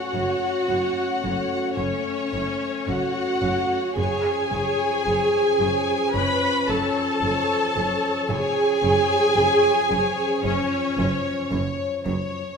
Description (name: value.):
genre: cinematic.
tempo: 55 BPM.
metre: 4/4.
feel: straight.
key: unclear.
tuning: A4 = 439 Hz.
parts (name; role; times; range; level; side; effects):
clear studio violin section; melody; 0.0-12.6 s; C#5; -32 LUFS; left 4 dB; none.
rich studio violin section; second line; 0.0-11.5 s; C#5 to B5; -26 LUFS; left 1 dB; none.
rich studio viola section; accompaniment; 0.0-11.5 s; C#4 to B4; -23 LUFS; right 1 dB; none.
dark French horn section; sustained chords; 0.0-12.4 s; E#3 to C#4; -30 LUFS; left 4 dB; none.
felt-muted upright piano; texture; 0.0-4.0 s; G#5; -47 LUFS; left 2 dB; none.
rich studio cello section; bass; 0.1-12.1 s; F#2; -32 LUFS; right 2 dB; none.
clear studio double bass section; bass; 0.2-12.1 s; F#1; -33 LUFS; right 3 dB; none.
room: moderate scoring stage reverb, RT60 1.6 s.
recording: minimal, uncompressed stereo recording.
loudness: -20 LUFS.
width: side -6 dB against mid.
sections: 0.0-12.6 A section.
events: none.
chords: 0.0 F#m; 4.0 C#/F#.